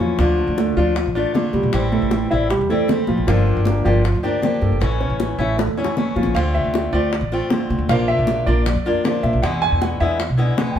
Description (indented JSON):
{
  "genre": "latin, Cuban son and guajira",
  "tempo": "156 BPM",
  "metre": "4/4",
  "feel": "straight",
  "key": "D minor",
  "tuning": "A4 = 442 Hz",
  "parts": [
    { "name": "fingerpicked swing-style acoustic guitar", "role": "accompaniment", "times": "0.0-10.8 s", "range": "B2 to G4", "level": "-23 LUFS", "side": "left 2 dB", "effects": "none" },
    { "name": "dark grand piano", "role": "arpeggios", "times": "0.0-10.8 s", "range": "F3 to G#5", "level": "-22 LUFS", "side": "right 1 dB", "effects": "none" },
    { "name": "upright bass", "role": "bass", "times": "0.0-10.8 s", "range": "G1 to E3", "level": "-20 LUFS", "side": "equal", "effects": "none" },
    { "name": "bongos", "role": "percussion", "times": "0.0-10.8 s", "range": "none", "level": "-26 LUFS", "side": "left 3 dB", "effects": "none" },
    { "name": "congas", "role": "percussion", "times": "0.0-10.8 s", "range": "none", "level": "-27 LUFS", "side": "equal", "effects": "none" }
  ],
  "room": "wet studio reverb, RT60 0.7 s",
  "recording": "heard from further back in the room",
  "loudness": "-16 LUFS",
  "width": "side -9 dB against mid",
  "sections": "0.0-6.4 A section; 6.4-10.8 B section",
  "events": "drum fill 5.6-6.4; grand piano solo 6.4-10.8",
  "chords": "0.2 Dm; 1.7 Am7; 3.3 Gm7; 4.8 A; 6.4 Dm7; 7.9 Bb; 9.4 E7",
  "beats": "| 0.19 0.58 0.96 1.35 | 1.73 2.12 2.50 2.89 | 3.27 3.66 4.05 4.43 | 4.82 5.20 5.59 5.97 | 6.36 6.74 7.13 7.51 | 7.89 8.28 8.66 9.05 | 9.43 9.81 10.20 10.58"
}